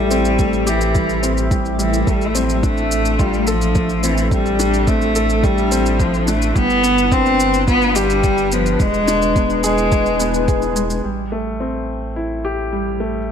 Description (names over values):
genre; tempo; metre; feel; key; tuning
piano and strings electronica; 107 BPM; 4/4; straight; unclear; A4 = 440 Hz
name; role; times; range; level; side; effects
rich cello; melody; 0.0-10.7 s; E3 to C4; -18 LUFS; equal; ping-pong delay
granular cloud pad; sustained chords; 0.0-13.3 s; G3 to C5; -25 LUFS; left 3 dB; built-in reverb
felt-muted upright piano; riff; 0.0-13.3 s; G3 to A4; -21 LUFS; left 1 dB; low-pass filter, ping-pong delay
round analog bass; bass; 0.0-13.3 s; E1 to A1; -23 LUFS; equal; sidechain pumping
shaker; drums; 0.1-11.0 s; none; -28 LUFS; right 1 dB; overdrive
electronic kick drum; drums; 0.4-10.6 s; none; -20 LUFS; equal; overdrive
room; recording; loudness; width
light reverb, small room ambience; none; -15 LUFS; side -8 dB against mid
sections
0.0-11.0 A section; 11.0-13.3 B section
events
none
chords
0.0 Am7; 2.1 F6/A; 6.6 G7; 8.8 E7; 11.0 Am7